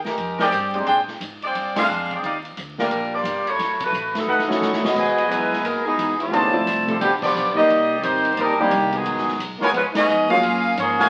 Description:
jazz, big band swing; 176 BPM; 4/4; swing 63% on 8ths; A4 = 443 Hz
upright bass; bass; 0.0-11.1 s; Gb1 to Bb2; -38 LUFS; equal
swinging big-band drum kit; drums; 0.0-11.1 s; crash cymbal, hi-hat, kick drum, ride cymbal, snare drum; -33 LUFS; equal
clear saxophone section; melody; 0.1-11.1 s; Eb3 to F5; -23 LUFS; equal
warm trumpet section; stabs; 0.4-11.1 s; D4 to Bb5; -24 LUFS; equal
bright upright piano; accompaniment; 0.7-10.4 s; Eb3 to G5; -28 LUFS; equal
clear trombone section; second line; 4.1-11.1 s; A2 to F#4; -28 LUFS; equal
wet studio reverb, RT60 0.8 s; very old 78 rpm record, vinyl crackle; -21 LUFS; mono
0.0-5.0 A section; 5.0-11.1 B section
band accent 1.7, 3.8, 7.2, 9.9; drum fill 4.3-5.0
0.0 Fm11; 0.9 Bb13; 2.2 Ebmaj9; 3.6 Gbm7; 4.3 B7; 5.0 Emaj7; 6.3 Dm7; 7.0 G7b13; 7.7 Cm9; 9.1 Abm7; 9.7 Db7; 10.4 Gbmaj9
0.18 0.53 | 0.87 1.21 1.55 1.89 | 2.23 2.57 2.91 3.25 | 3.59 3.93 4.28 4.62 | 4.96 5.30 5.64 5.98 | 6.33 6.67 7.01 7.35 | 7.69 8.04 8.38 8.72 | 9.06 9.41 9.75 10.09 | 10.44 10.78

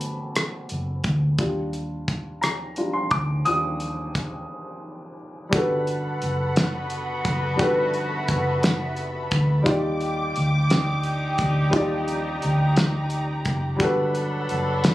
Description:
slow six-eight R&B; 58 BPM (dotted quarters); 6/8; straight; G major; A4 = 440 Hz
dark grand piano; accompaniment; 0.0-14.9 s; G3 to Eb6; -26 LUFS; left 1 dB
vintage muted fingered electric bass; bass; 0.0-14.9 s; F#1 to Eb2; -26 LUFS; equal
cloth-damped thuddy drum kit; drums; 0.0-14.9 s; hi-hat, kick drum, rim click, snare drum; -24 LUFS; equal
muted studio string section; sustained chords; 5.5-14.9 s; G4 to D6; -30 LUFS; equal
warm horn section; stabs; 6.6-14.9 s; D3 to A4; -31 LUFS; right 1 dB; tape echo
light reverb; recorded on a phone in the room, studio reverb; -21 LUFS; side -16 dB against mid
0.0-5.5 A section; 5.5-14.9 B section
grand piano solo 0.0-5.5; break 4.5-5.5
0.0 Gmaj9; 1.4 Ebmaj7; 5.5 Gmaj9; 9.7 Ebmaj7; 13.8 Gmaj9
0.35 | 1.39 2.42 | 3.46 4.49 | 5.52 6.56 | 7.59 8.63 | 9.66 10.70 | 11.73 12.77 | 13.80 14.84

